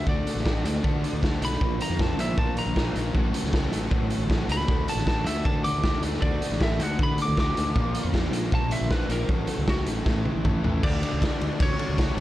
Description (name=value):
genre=indie rock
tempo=156 BPM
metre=4/4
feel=straight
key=unclear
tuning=A4 = 442 Hz
part: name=lightly driven lead guitar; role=melody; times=0.0-12.2 s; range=F#4 to D6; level=-31 LUFS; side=equal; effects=digital delay
part: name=overdriven electric guitar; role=riff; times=0.0-12.2 s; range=D3 to Bb4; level=-33 LUFS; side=left 7 dB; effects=none
part: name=overdriven semi-hollow guitar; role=riff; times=0.0-12.2 s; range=A2 to F#4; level=-33 LUFS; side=right 5 dB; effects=lush chorus
part: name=fuzz fingered electric bass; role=bass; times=0.0-12.2 s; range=A1 to D3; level=-29 LUFS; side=equal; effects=overdrive
part: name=raw garage drum kit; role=drums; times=0.1-12.2 s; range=crash cymbal, hi-hat, kick drum, ride cymbal, snare drum, toms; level=-26 LUFS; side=equal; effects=none
part: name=glockenspiel with soft plastic mallets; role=second line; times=10.8-12.2 s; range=C#6 to D6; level=-42 LUFS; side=left 4 dB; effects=none
room=little or no reverb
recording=dark, warm production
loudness=-22 LUFS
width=side -15 dB against mid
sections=0.0-10.8 A section; 10.8-12.2 B section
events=lead electric guitar solo 0.0-10.8; drum fill 10.1-10.8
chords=0.0 D; 1.6 Bb; 3.1 F#m/A; 4.7 D; 7.8 Bb; 9.3 F#m/A; 10.1 A; 10.8 D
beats=| 0.07 0.45 0.84 1.22 | 1.61 1.99 2.38 2.76 | 3.15 3.53 3.92 4.30 | 4.69 5.07 5.45 5.84 | 6.22 6.61 6.99 7.38 | 7.76 8.14 8.53 8.91 | 9.29 9.68 10.06 10.45 | 10.83 11.21 11.60 11.98